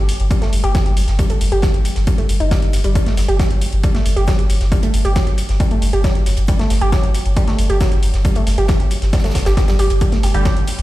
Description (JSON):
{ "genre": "driving peak-time techno", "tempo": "136 BPM", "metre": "4/4", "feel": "straight", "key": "unclear", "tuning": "A4 = 439 Hz", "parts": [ { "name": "warm sub bass", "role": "bass", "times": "0.0-10.8 s", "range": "G1", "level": "-18 LUFS", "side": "equal", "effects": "sidechain pumping, low-pass filter" }, { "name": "deep reggae drum kit", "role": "drums", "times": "0.1-10.8 s", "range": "hi-hat, shaker, snare drum", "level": "-32 LUFS", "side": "right 1 dB", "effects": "high-pass filter on hats, high-pass filter on snare, high-pass filter on perc, high-pass filter on room" }, { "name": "electronic hi-hat", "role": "drums", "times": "0.1-10.8 s", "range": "none", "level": "-30 LUFS", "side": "left 1 dB", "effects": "none" }, { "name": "warbly dusty pluck", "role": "riff", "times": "0.3-10.5 s", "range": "F#3 to G4", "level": "-21 LUFS", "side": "right 1 dB", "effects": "chorus, overdrive, sidechain pumping, dub echo" }, { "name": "electronic kick drum", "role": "drums", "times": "0.3-10.5 s", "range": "none", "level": "-17 LUFS", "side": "equal", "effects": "none" }, { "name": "sync-sweep polysynth", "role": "stabs", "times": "10.3-10.5 s", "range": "D3 to G4", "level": "-22 LUFS", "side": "right 1 dB", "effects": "chorus, phaser, sidechain pumping, dub echo" } ], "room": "small room reverb", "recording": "played on a big sound system in a bare room, stone room reverb", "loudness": "-14 LUFS", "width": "side -16 dB against mid", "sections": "0.0-10.8 A section", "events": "none", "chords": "0.0 G5" }